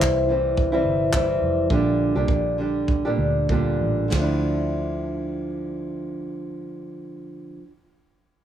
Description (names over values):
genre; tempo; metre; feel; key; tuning
acoustic pop; 93-109 BPM; 4/4; swing 55% on 16ths; D minor; A4 = 440 Hz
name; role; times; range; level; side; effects
nylon-string guitar; accompaniment; 0.0-7.7 s; Bb2 to G4; -23 LUFS; equal; plate reverb
vintage muted fingered electric bass; bass; 0.0-7.6 s; F1 to D2; -27 LUFS; right 1 dB; none
soft brush drum kit; drums; 0.0-4.3 s; handclaps, kick drum, ride cymbal, snare drum; -25 LUFS; right 1 dB; none
room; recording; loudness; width
moderate studio reverb, RT60 0.6 s; none; -20 LUFS; side -10 dB against mid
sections
0.0-4.1 A section; 4.1-8.4 B section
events
slowing down 0.0-4.1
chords
0.0 C; 1.7 Gm/Bb; 4.1 Dmadd9